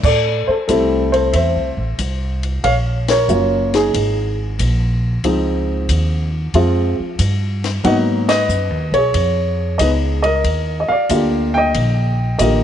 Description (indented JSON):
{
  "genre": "jazz piano trio",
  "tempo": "92 BPM",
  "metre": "4/4",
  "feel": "swing 69% on 8ths",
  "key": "unclear",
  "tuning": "A4 = 442 Hz",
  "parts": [
    { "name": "dark upright piano", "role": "melody", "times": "0.0-12.6 s", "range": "D3 to G5", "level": "-16 LUFS", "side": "equal", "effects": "none" },
    { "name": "upright bass", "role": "bass", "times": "0.0-12.6 s", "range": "Gb1 to A2", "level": "-19 LUFS", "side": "equal", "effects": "none" },
    { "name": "compact cocktail drum kit", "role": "drums", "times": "0.0-12.6 s", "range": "crash cymbal, hi-hat, kick drum, ride cymbal, snare drum", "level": "-26 LUFS", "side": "left 4 dB", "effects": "none" }
  ],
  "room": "light reverb, small room reverb",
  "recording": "1960s-style stereo, nothing above 10.4 kHz",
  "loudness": "-15 LUFS",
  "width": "side -9 dB against mid",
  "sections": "0.0-12.6 A section",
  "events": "band accent 3.0-3.3, 8.2-8.5",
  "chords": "0.0 Am7; 2.6 Ebm9 (rootless); 3.9 Absus2; 5.2 Dbmaj7; 7.8 Abm7; 9.1 Db9; 10.4 Ebmaj7"
}